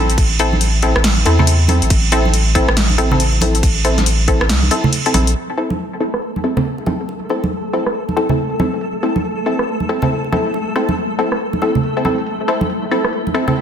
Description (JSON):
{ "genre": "deep dubstep", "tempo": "139 BPM", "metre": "4/4", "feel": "swing 62% on 16ths, half-time", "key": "A minor", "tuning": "A4 = 438 Hz", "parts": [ { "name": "filtered dub chord stab", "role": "stabs", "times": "0.0-13.6 s", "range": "C4 to A4", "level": "-19 LUFS", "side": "left 2 dB", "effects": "chorus, dub echo" }, { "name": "saturated sub bass", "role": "bass", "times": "0.0-5.3 s", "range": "A1 to E2", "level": "-15 LUFS", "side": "equal", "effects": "none" }, { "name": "deep house drum kit", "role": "drums", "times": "0.1-13.6 s", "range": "crash cymbal, hi-hat, rim click, snare drum", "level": "-19 LUFS", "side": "right 1 dB", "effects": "overdrive, low-pass filter on hats, low-pass filter on snare, low-pass filter on cymbals, low-pass filter on room" }, { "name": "electronic kick drum", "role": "drums", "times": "0.2-4.4 s", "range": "none", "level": "-15 LUFS", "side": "equal", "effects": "none" }, { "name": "congas and bongos", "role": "percussion", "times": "0.5-13.5 s", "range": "none", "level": "-21 LUFS", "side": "right 3 dB", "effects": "dub echo" }, { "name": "flickering grainy texture", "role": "texture", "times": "5.8-13.6 s", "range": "A3 to A4", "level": "-24 LUFS", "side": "equal", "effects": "built-in reverb" } ], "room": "moderate echo chamber reverb, RT60 1.3 s", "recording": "dense, heavily limited modern master", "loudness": "-14 LUFS", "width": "side -8 dB against mid", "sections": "0.0-5.4 A section; 5.4-13.6 B section", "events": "drop 0.0-5.4", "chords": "0.0 Am" }